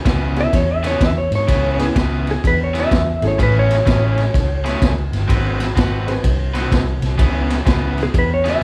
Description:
electric blues shuffle; 126 BPM; 4/4; swing 65% on 8ths; C# minor; A4 = 440 Hz
cranked stack guitar; riff; 0.1-8.6 s; C#3 to B4; -25 LUFS; equal; overdrive
vintage muted fingered electric bass; bass; 0.1-8.5 s; G1 to G#2; -22 LUFS; equal
raw garage drum kit; drums; 0.1-8.5 s; kick drum, ride cymbal, snare drum; -22 LUFS; equal
clean lap steel guitar; melody; 0.4-5.0, 8.0-8.6 s; G#4 to E5; -22 LUFS; equal
bright upright piano; accompaniment; 0.4-6.2 s; A3 to B4; -26 LUFS; equal
light reverb; small room reverb; -17 LUFS; mono
0.0-8.6 A section
0.0 C#m7; 3.4 Amaj7; 5.3 G#7#9; 7.2 C#m7

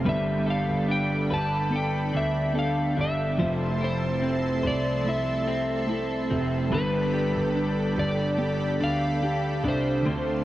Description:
dream pop; 72 BPM; 4/4; straight; A4 = 439 Hz
clean electric guitar; accompaniment; 0.0-10.4 s; D3 to A4; -31 LUFS; right 2 dB; harmonic tremolo, wide subtle chorus
lush unison pad; sustained chords; 0.0-10.4 s; A4 to C6; -33 LUFS; equal; chorus
clean electric guitar; arpeggios; 0.0-10.4 s; D3 to C5; -30 LUFS; left 2 dB; analog chorus, digital delay
warm concert grand piano; bass; 0.0-10.4 s; F1 to D2; -28 LUFS; right 1 dB
electric slide guitar; melody; 0.1-10.4 s; B4 to A5; -29 LUFS; equal; digital delay
moderate shimmer reverb, RT60 6.2 s; worn, warbling old tape, cassette tape, warbly pitch drift; -23 LUFS; side -14 dB against mid
0.0-10.4 A section
0.1 Gadd9; 3.4 Fmaj7; 6.7 Gadd9

